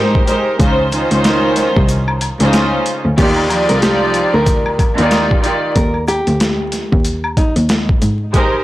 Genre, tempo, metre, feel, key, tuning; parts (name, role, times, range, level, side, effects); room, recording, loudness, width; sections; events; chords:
hip hop, boom-bap hip-hop; 93 BPM; 4/4; swing 59% on 16ths; Eb major; A4 = 441 Hz
warm studio string section; accompaniment; 0.0-8.6 s; Db3 to D5; -15 LUFS; right 1 dB; cassette tape
boom bap sampler-style drum kit; drums; 0.2-8.5 s; crash cymbal, hi-hat, kick drum, snare drum; -16 LUFS; equal; overdrive
tube shaker and woodblock; percussion; 0.3-8.6 s; -25 LUFS; left 2 dB
warm cello; bass; 0.6-8.6 s; C2 to Ab2; -18 LUFS; equal; transformer saturation
nylon-string guitar; melody; 3.2-7.5 s; Eb4 to Bb4; -20 LUFS; equal; analog delay
light reverb; blown-out, overdriven recording, vinyl crackle, overdrive; -12 LUFS; side -16 dB against mid
0.0-3.2 A section; 3.2-8.6 B section
kick muted 1.9-3.2
0.0 Abmaj9; 0.6 Dbmaj9; 3.2 Ebmaj9; 8.0 Abmaj9